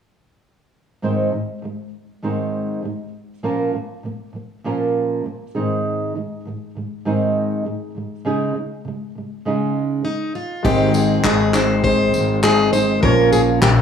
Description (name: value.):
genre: acoustic pop.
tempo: 100 BPM.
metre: 4/4.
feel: swing 55% on 16ths.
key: Ab major.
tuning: A4 = 443 Hz.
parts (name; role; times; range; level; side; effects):
flamenco guitar; accompaniment; 1.0-13.8 s; Ab2 to C5; -20 LUFS; right 2 dB; none.
picked plugged-in steel-string acoustic guitar; melody; 10.0-13.7 s; Eb4 to C5; -19 LUFS; left 1 dB; none.
clear upright piano; accompaniment; 10.6-13.8 s; Ab3 to Db5; -28 LUFS; left 7 dB; none.
tonewheel organ; sustained chords; 10.6-13.8 s; Eb3 to Db4; -28 LUFS; left 3 dB; none.
upright bass; bass; 10.6-13.8 s; Ab1 to Bb1; -19 LUFS; left 3 dB; none.
soft brush drum kit; drums; 10.6-13.8 s; crash cymbal, handclaps, kick drum, tambourine; -23 LUFS; left 2 dB; none.
room: moderate plate reverb, RT60 1.5 s.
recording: studio reverb.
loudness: -17 LUFS.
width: side -8 dB against mid.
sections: 1.0-10.6 A section; 10.6-13.8 B section.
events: none.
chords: 1.0 Ab; 3.4 Bbm; 5.5 Ab; 8.3 Dbsus2; 10.6 Ab; 13.0 Bbm.